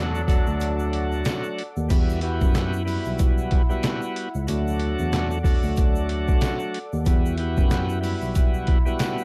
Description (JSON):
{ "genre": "hip hop, boom-bap hip-hop", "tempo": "93 BPM", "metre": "4/4", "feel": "swing 57% on 16ths", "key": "E minor", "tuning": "A4 = 438 Hz", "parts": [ { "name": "bright tonewheel organ", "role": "accompaniment", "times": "0.0-9.2 s", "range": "F#3 to G4", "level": "-31 LUFS", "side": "equal", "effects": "overdrive, slow rotary speaker, high-pass filter, low-pass filter" }, { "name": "warm analog pad", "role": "sustained chords", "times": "0.0-9.2 s", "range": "E4 to D6", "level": "-36 LUFS", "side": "equal", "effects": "chorus, high-pass filter, low-pass filter" }, { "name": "bright trumpet section", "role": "stabs", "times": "0.0-1.5 s", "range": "F#3 to A4", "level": "-35 LUFS", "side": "equal", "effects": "high-pass filter, low-pass filter, digital delay" }, { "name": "tine electric piano", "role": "bass", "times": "0.0-9.0 s", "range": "B1 to F#2", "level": "-29 LUFS", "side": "equal", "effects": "overdrive" }, { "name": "tube shaker", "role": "percussion", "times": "0.1-9.2 s", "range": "none", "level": "-50 LUFS", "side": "equal", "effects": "none" }, { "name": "trip hop sampler-style drum kit", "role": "drums", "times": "0.3-9.2 s", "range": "crash cymbal, handclaps, hi-hat, kick drum, snare drum", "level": "-24 LUFS", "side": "equal", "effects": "none" } ], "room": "little or no reverb", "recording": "dark, warm production", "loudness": "-23 LUFS", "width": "mono", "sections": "0.0-1.9 A section; 1.9-9.2 A section", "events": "break 0.6-1.9", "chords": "0.0 D; 1.9 Emadd9; 4.5 D; 7.1 Emadd9" }